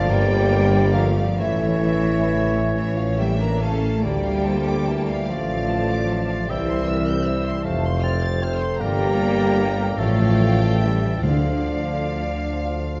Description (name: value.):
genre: classical.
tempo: 43-53 BPM (dotted quarters).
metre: 6/8.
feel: rubato.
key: D minor.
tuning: A4 = 441 Hz.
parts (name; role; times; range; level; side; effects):
rich studio violin section; melody; 0.0-13.0 s; Bb4 to A6; -37 LUFS; equal; none.
clear oboe; second line; 0.0-13.0 s; A4 to F5; -34 LUFS; equal; none.
mellow hollow silver concert flute; second line; 0.0-12.5 s; D5 to Bb5; -35 LUFS; equal; none.
rich studio violin section; second line; 0.0-12.5 s; D5 to Bb5; -39 LUFS; equal; none.
warm clarinet; second line; 0.0-13.0 s; Bb4 to D5; -36 LUFS; equal; none.
rich studio viola section; accompaniment; 0.0-12.5 s; F3 to D4; -32 LUFS; equal; none.
warm bassoon; accompaniment; 0.0-13.0 s; E3 to C4; -34 LUFS; equal; none.
mellow French horn section; sustained chords; 0.0-12.5 s; D4 to Bb4; -30 LUFS; equal; none.
concert harp; arpeggios; 0.0-13.0 s; F2 to A4; -33 LUFS; equal; none.
rich studio cello section; bass; 0.0-12.5 s; D3 to Bb3; -30 LUFS; equal; none.
clear tuba; bass; 0.1-13.0 s; F1 to D2; -29 LUFS; equal; none.
warm studio double bass section; bass; 0.1-13.0 s; F1 to D2; -27 LUFS; equal; none.
warm trombone section; sustained chords; 0.9-13.0 s; C3 to C4; -37 LUFS; equal; none.
timpani; percussion; 11.2-12.5 s; D3; -27 LUFS; equal; none.
room: wet concert hall reverb, RT60 2.1 s.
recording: dark, warm production, nothing above 7.7 kHz.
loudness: -21 LUFS.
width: mono.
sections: 0.0-13.0 A section.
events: none.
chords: 0.0 Gm; 1.4 A; 4.0 Dm; 6.5 C; 7.6 F; 8.8 Gm; 10.0 A7; 11.2 Dm.